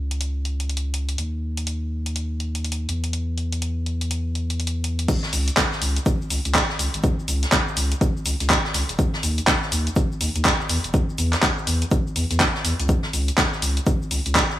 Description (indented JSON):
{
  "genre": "deep house",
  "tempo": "123 BPM",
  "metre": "4/4",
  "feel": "swing 61% on 16ths",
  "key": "C# minor",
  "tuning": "A4 = 440 Hz",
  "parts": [
    { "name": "warm sub bass", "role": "bass", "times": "0.0-14.4 s", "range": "D#1 to E2", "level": "-24 LUFS", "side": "equal", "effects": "tube saturation, sidechain pumping" },
    { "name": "deep house drum kit", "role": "drums", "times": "0.1-14.6 s", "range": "crash cymbal, handclaps, hi-hat, shaker", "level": "-24 LUFS", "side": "equal", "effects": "none" },
    { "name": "electronic kick drum", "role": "drums", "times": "5.1-14.5 s", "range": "none", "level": "-23 LUFS", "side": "equal", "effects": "none" },
    { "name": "jazz brush drum kit", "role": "drums", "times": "5.1-14.6 s", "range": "hi-hat, shaker, snare drum", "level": "-30 LUFS", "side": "left 1 dB", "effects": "high-pass filter on hats, high-pass filter on snare, high-pass filter on perc, high-pass filter on room" }
  ],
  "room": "light reverb, small room ambience",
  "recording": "none",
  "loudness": "-20 LUFS",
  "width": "side -13 dB against mid",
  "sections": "0.0-5.1 A section; 5.1-14.6 B section",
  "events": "drop 5.1-14.6",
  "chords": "none"
}